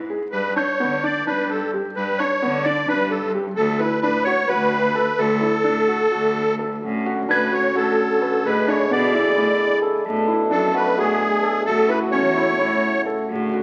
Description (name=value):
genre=contemporary instrumental, chamber music in an uneven meter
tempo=259 BPM (eighths)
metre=7/8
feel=straight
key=unclear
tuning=A4 = 440 Hz
part: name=rich cello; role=bass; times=0.0-13.6 s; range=D2 to D3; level=-30 LUFS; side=equal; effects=none
part: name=felt-muted upright piano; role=arpeggios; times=0.1-13.6 s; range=B3 to B4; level=-29 LUFS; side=equal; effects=none
part: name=musette accordion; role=melody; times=0.3-13.0 s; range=G#4 to D5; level=-23 LUFS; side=equal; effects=none
part: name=glockenspiel with rubber mallets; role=texture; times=0.6-2.0, 7.3-8.6 s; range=G6 to G#6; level=-29 LUFS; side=equal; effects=none
part: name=clear French horn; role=second line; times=6.8-13.6 s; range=F#4 to A4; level=-26 LUFS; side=equal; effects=none
part: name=pedal harmonium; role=sustained chords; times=6.8-13.6 s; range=B2 to F#4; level=-29 LUFS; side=equal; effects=none
room=wet recital hall reverb, RT60 1.6 s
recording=very old 78 rpm record, vinyl crackle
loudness=-20 LUFS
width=mono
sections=0.0-6.8 A section; 6.8-13.6 B section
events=none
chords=0.3 G; 3.6 D; 6.8 Dmaj7/A; 8.4 E7/A; 10.1 Bm7; 11.7 A6